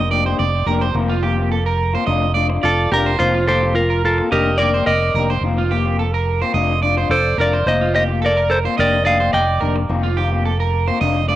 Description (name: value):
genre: highlife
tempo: 107 BPM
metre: 4/4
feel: straight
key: F mixolydian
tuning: A4 = 440 Hz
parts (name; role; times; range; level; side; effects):
- semi-hollow electric guitar; melody; 0.0-9.7 s; F4 to G5; -18 LUFS; equal; cassette tape
- electric guitar at the edge of break-up; arpeggios; 0.0-11.4 s; F4 to Eb5; -21 LUFS; right 7 dB; analog delay
- fingered electric bass; bass; 0.0-11.4 s; F1; -20 LUFS; equal; none
- electric guitar at the edge of break-up; accompaniment; 0.1-11.4 s; Eb3 to G4; -23 LUFS; left 6 dB; none
room: light reverb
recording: home recording on cassette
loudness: -15 LUFS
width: side -14 dB against mid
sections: 0.0-11.4 A section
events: none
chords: 0.0 Ebmaj7/F; 1.0 F7sus4; 2.1 Bbmaj7/F; 3.2 F7sus4; 4.3 Ebmaj7/F; 5.4 F7sus4; 6.5 Bbmaj7/F; 7.7 F7sus4; 8.8 Ebmaj7/F; 9.9 F7sus4